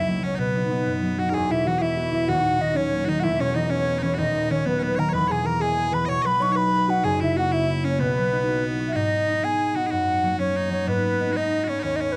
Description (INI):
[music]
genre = celtic folk, Celtic jig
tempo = 126 BPM (dotted quarters)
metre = 6/8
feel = straight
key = B major, G# minor from 9.0 s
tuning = A4 = 440 Hz
[part]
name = bright baroque flute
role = melody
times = 0.0-12.2 s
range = B4 to C#6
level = -26 LUFS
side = equal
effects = none
[part]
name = loud bright bagpipes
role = second line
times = 0.0-12.2 s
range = B3 to D#5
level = -33 LUFS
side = equal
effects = none
[part]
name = concert harp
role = accompaniment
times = 0.0-12.2 s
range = D#1 to B4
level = -27 LUFS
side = equal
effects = none
[part]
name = steel pan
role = second line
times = 1.2-8.8 s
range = B3 to C#5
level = -32 LUFS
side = equal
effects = none
[sound]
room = moderate small room reverb, RT60 0.6 s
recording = dry, close 1970s-style studio recording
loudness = -23 LUFS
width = mono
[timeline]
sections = 0.0-1.3 A section; 1.3-9.0 A section; 9.0-12.2 B section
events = none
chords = 0.4 B; 1.3 E; 2.3 D#m; 3.2 E; 4.2 D#m; 5.1 E; 6.1 B; 7.0 F#7; 8.0 B; 9.0 G#m; 9.9 F#; 10.9 G#m